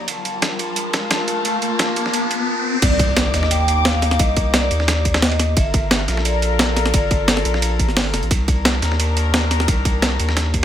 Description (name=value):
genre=liquid drum and bass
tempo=175 BPM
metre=4/4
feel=straight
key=C minor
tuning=A4 = 439 Hz
part: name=warm studio string section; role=sustained chords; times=0.0-10.6 s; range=Eb3 to D6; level=-24 LUFS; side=left 3 dB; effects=sidechain pumping
part: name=saturated sub bass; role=bass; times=0.0-10.6 s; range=F1 to Eb2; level=-21 LUFS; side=equal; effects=high-pass filter
part: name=riser and impact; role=sound effects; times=0.0-4.2 s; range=none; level=-24 LUFS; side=left 2 dB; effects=none
part: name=breakbeat sampler-style drum kit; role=drums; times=0.1-10.6 s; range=crash cymbal, hi-hat, snare drum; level=-21 LUFS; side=right 1 dB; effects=none
part: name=dusty soul sampler-style drum kit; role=drums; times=0.1-10.6 s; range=hi-hat, ride cymbal, snare drum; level=-24 LUFS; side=right 1 dB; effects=high-pass filter on cymbals, high-pass filter on snare, high-pass filter on hats
part: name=vibraphone with medium mallets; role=melody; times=2.8-7.6 s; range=D5 to G5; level=-24 LUFS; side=equal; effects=vintage 12-bit sampler grit, ping-pong delay
part: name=electronic kick drum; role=drums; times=2.8-10.6 s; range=none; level=-18 LUFS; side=equal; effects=none
room=light reverb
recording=none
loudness=-16 LUFS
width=side -10 dB against mid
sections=0.0-2.8 A section; 2.8-10.6 B section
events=build-up 0.0-2.8; riser 0.0-2.8; drop 2.8-10.6; impact 2.8-4.2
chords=0.1 Gm9; 2.8 Cm9; 5.6 Gm9; 8.3 Cm9